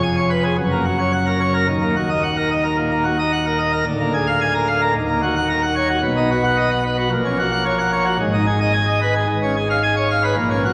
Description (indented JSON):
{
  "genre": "classical, organ toccata",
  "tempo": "110 BPM",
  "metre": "4/4",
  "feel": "straight",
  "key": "F# major",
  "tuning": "A4 = 439 Hz",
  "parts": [
    { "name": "pipe organ, plenum", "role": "solo", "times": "0.0-10.7 s", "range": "D1 to G#5", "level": "-19 LUFS", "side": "equal", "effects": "none" }
  ],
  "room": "wet church reverb, RT60 2.6 s",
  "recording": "vinyl crackle",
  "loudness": "-19 LUFS",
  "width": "mono",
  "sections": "0.0-10.7 A section",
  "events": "none",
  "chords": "0.0 C#7/E#; 0.6 F#; 1.7 D#m; 3.9 A#7/D; 5.0 D#m7; 6.0 B; 7.1 F#/A#; 8.2 G#m; 9.3 C#7/G#"
}